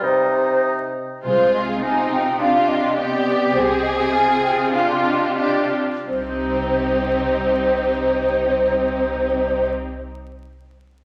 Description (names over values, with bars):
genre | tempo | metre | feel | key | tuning
quick classical-period movement for symphony orchestra | 83-106 BPM | 2/4 | straight | C minor | A4 = 440 Hz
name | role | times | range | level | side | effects
clear oboe | second line | 0.0-0.9 s | Eb4 | -27 LUFS | equal | none
mellow hollow concert flute | second line | 0.0-9.7 s | C5 to Ab5 | -23 LUFS | equal | none
mellow bassoon | accompaniment | 0.0-0.9 s | C3 | -26 LUFS | equal | none
clear studio violin section | second line | 1.2-9.7 s | Eb4 to Ab4 | -27 LUFS | equal | none
rich studio viola section | accompaniment | 1.2-9.7 s | Ab3 to G4 | -28 LUFS | equal | none
rich studio cello section | bass | 1.2-9.7 s | C3 | -30 LUFS | equal | none
rich studio double bass section | bass | 1.2-9.7 s | C2 | -34 LUFS | equal | none
warm studio violin section | melody | 1.3-9.7 s | F4 to Ab4 | -33 LUFS | equal | none
room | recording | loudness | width
wet recital hall reverb, RT60 1.6 s | tape saturation, vinyl crackle | -19 LUFS | mono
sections
0.0-1.2 A section; 1.2-6.1 B section; 6.1-8.9 C section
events
slowing down 3.0-6.1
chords
0.0 Cm; 1.2 Fm/C; 2.4 G7/C; 3.5 Fm/C; 4.7 G5/C; 6.1 Cm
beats
| 0.05 0.65 | 1.25 1.83 | 2.40 2.97 | 3.54 4.12 | 4.73 5.37 | 6.07 6.78 | 7.49 8.20